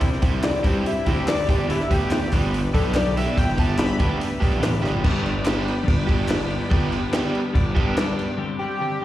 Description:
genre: indie rock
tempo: 143 BPM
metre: 4/4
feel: straight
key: unclear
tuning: A4 = 440 Hz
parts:
  - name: sweeping resonant pad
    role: sustained chords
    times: 0.0-8.4 s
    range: E4 to B5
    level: -35 LUFS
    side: left 1 dB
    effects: chorus, plate reverb
  - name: overdriven electric guitar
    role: riff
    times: 0.0-8.0 s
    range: G3 to G4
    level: -28 LUFS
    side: right 5 dB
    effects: analog chorus, slapback echo, tape echo
  - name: twelve-string electric guitar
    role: riff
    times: 0.0-9.0 s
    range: G2 to G4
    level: -29 LUFS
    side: left 5 dB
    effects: wide subtle chorus, slapback echo
  - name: fuzz picked electric bass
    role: bass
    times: 0.0-8.2 s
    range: G1 to G2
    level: -24 LUFS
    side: equal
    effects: overdrive
  - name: compact cocktail drum kit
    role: drums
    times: 0.0-8.3 s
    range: crash cymbal, hi-hat, kick drum, snare drum, toms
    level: -23 LUFS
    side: equal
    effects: none
  - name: pulse-width lead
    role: melody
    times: 0.4-4.2, 8.6-9.0 s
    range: E4 to B5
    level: -27 LUFS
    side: left 2 dB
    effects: chorus, plate reverb, slapback echo, tape echo
  - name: group handclap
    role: percussion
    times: 0.4-8.1 s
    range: none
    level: -38 LUFS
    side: left 2 dB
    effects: none
room: light reverb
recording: live gig heard through the venue's PA, recital hall reverb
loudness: -19 LUFS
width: side -14 dB against mid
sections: 0.0-5.0 A section; 5.0-8.4 B section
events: analog synth lead solo 0.0-5.0; drum fill 4.8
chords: 0.0 Cadd9; 1.5 G; 8.4 Gsus4

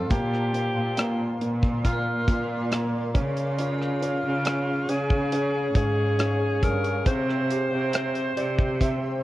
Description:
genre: pop ballad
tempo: 69 BPM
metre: 4/4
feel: straight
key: unclear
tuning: A4 = 443 Hz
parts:
  - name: clear alto saxophone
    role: melody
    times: 0.0-9.2 s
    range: F4 to C5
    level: -29 LUFS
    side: equal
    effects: none
  - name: clear baby grand piano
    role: accompaniment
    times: 0.0-9.2 s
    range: F3 to E5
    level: -30 LUFS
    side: right 1 dB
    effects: none
  - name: shimmering ambient pad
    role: sustained chords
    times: 0.0-9.2 s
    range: G4 to Db6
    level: -35 LUFS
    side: equal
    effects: chorus, built-in reverb
  - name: rich studio cello section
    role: bass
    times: 0.0-9.2 s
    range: F2 to Db3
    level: -28 LUFS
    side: equal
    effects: none
  - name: modern studio drum kit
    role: drums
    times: 0.1-9.0 s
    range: hi-hat, kick drum, rim click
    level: -26 LUFS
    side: equal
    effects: none
room: small room ambience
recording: worn, warbling old tape, cassette tape, warbly pitch drift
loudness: -22 LUFS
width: side -15 dB against mid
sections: 0.0-9.2 A section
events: grand piano fill 7.9-9.2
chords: 0.1 Bbadd9; 3.2 Db; 7.1 C5

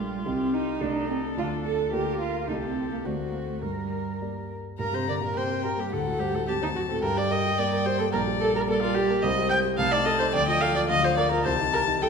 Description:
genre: quick classical-period movement for piano quartet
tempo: 108 BPM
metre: 2/4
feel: rubato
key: G minor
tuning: A4 = 440 Hz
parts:
  - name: dark violin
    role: melody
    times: 0.0-12.1 s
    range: G4 to Bb5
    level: -31 LUFS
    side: left 8 dB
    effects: none
  - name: dark cello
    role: second line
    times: 0.0-12.1 s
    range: Eb2 to A4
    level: -31 LUFS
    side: right 5 dB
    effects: none
  - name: dark concert grand piano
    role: accompaniment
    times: 0.0-12.1 s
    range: Bb1 to Eb5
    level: -29 LUFS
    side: left 1 dB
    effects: none
  - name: rich viola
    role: accompaniment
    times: 0.0-12.1 s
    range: D4 to G5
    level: -27 LUFS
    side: right 2 dB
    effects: none
room: wet concert hall reverb, RT60 2.0 s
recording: minimal, uncompressed stereo recording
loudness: -23 LUFS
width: side -6 dB against mid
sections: 0.0-4.8 A section; 4.8-12.1 B section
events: none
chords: 0.3 Cm; 0.8 Adim/C; 1.4 Dm; 1.9 Bb/D; 2.5 Am7b5/C; 3.1 D7; 3.6 Gm; 5.9 D7; 7.0 Gm; 8.1 Gm/Bb; 9.2 Cm; 9.8 Adim/C; 10.3 Dm; 10.9 Bb/D; 11.5 Cm

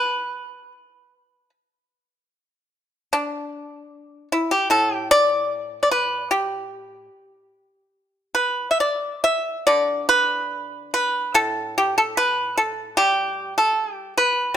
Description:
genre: chinese traditional, Chinese solo plucked strings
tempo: 75 BPM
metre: 4/4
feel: rubato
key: G gong mode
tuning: A4 = 436 Hz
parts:
  - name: pipa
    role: solo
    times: 0.0-14.6 s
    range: A2 to E5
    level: -19 LUFS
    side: equal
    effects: none
room: light reverb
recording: close, detailed microphones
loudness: -19 LUFS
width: side -10 dB against mid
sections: 0.0-9.7 A section; 9.7-14.6 B section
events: none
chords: none

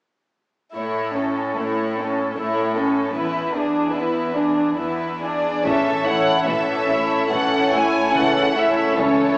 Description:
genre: classical, slow romantic movement for symphony orchestra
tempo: 73 BPM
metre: 3/4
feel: uneven beats, rubato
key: A major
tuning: A4 = 441 Hz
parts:
  - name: rich studio violin section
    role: melody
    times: 0.8-9.4 s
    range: G#4 to G#5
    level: -24 LUFS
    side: equal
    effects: none
  - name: rich studio violin section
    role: second line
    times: 0.8-9.4 s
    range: C#4 to C#5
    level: -23 LUFS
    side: equal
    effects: none
  - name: dark studio viola section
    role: accompaniment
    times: 0.8-9.4 s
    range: E3 to E4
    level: -23 LUFS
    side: equal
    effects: none
  - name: warm studio cello section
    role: bass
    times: 0.8-9.4 s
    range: E2 to C#3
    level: -29 LUFS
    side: equal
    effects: none
  - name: concert harp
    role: arpeggios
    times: 5.6-9.4 s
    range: A2 to C#5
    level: -29 LUFS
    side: left 1 dB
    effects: none
  - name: mellow French horn section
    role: sustained chords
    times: 5.7-9.4 s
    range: A3 to E4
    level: -24 LUFS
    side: equal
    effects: none
  - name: rich studio double bass section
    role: bass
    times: 5.7-9.4 s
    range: A1 to C#2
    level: -38 LUFS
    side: equal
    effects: none
room: wet recital hall reverb, RT60 1.8 s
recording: recorded in a church or concert hall, small speaker sound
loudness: -18 LUFS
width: side -26 dB against mid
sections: 0.8-5.7 A section; 5.7-9.4 B section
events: none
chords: 0.8 A; 3.1 E7; 5.7 A; 8.1 A/C#

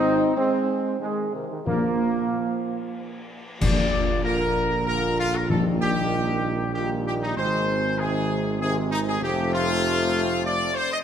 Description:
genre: classical, ceremonial fanfare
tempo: 96 BPM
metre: 3/4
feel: straight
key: Bb major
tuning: A4 = 440 Hz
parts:
  - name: warm French horn section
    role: sustained chords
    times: 0.0-10.9 s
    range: C3 to F4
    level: -30 LUFS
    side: left 4 dB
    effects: none
  - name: warm trombone section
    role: sustained chords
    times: 0.0-10.9 s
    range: Bb2 to Eb4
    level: -28 LUFS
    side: right 3 dB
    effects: none
  - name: dark tuba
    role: bass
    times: 0.0-10.7 s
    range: F1 to Bb1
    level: -28 LUFS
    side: right 3 dB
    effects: none
  - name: clear trumpet section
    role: melody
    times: 1.7-11.0 s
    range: Eb4 to Eb5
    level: -25 LUFS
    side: left 1 dB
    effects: none
  - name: timpani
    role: percussion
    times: 1.7-6.4 s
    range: Bb2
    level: -29 LUFS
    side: left 4 dB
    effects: none
  - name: clash cymbals and concert bass drum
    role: percussion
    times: 3.6-4.8 s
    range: none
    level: -29 LUFS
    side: left 1 dB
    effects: none
room: wet scoring stage reverb, RT60 1.8 s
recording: none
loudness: -21 LUFS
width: side -8 dB against mid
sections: 0.0-3.6 A section; 3.6-11.0 A section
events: band accent 3.6-4.2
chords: 0.0 Ab; 1.7 Bb5; 3.6 Bb; 5.5 Eb/Bb; 7.4 Ab; 9.2 F

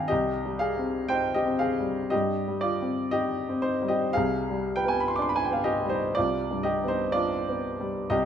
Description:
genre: classical, romantic nocturne for solo piano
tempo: 60 BPM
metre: 4/4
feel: rubato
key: C minor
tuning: A4 = 440 Hz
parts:
  - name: warm grand piano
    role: solo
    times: 0.0-8.3 s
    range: C2 to D6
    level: -24 LUFS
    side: equal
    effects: none
room: moderate recital hall reverb, RT60 1.5 s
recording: close, detailed microphones, faint mains hum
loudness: -24 LUFS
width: side -8 dB against mid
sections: 0.1-8.3 A section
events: none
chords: 0.1 Cm; 4.2 G7b9/C

